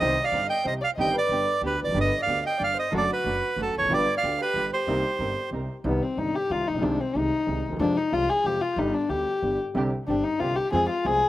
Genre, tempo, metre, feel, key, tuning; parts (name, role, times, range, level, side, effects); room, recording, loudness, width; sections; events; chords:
tango; 185 BPM; 3/4; rubato; C harmonic minor; A4 = 440 Hz
bandoneon; melody; 0.0-5.5 s; A4 to G5; -25 LUFS; right 3 dB; slapback echo
dark violin; second line; 0.0-11.3 s; B3 to Eb5; -27 LUFS; left 3 dB; slapback echo
warm baby grand piano; accompaniment; 0.0-11.2 s; G1 to Ab4; -30 LUFS; equal
muted chamber string section; stabs; 0.0-5.7, 9.8-11.2 s; A3 to Bb4; -35 LUFS; right 4 dB
upright bass; bass; 0.0-11.2 s; E1 to F2; -34 LUFS; right 1 dB
little or no reverb; recorded outdoors, with no room sound; -23 LUFS; side -14 dB against mid
0.0-5.9 A section; 5.9-11.3 B section
violin solo 5.9-11.3
0.0 Cm/G; 1.3 G; 2.9 D/F#; 3.9 G7; 4.9 Cm7; 5.9 Cm; 6.8 Ab/C; 7.8 Fm; 8.8 G; 9.8 Csus2; 10.7 Fm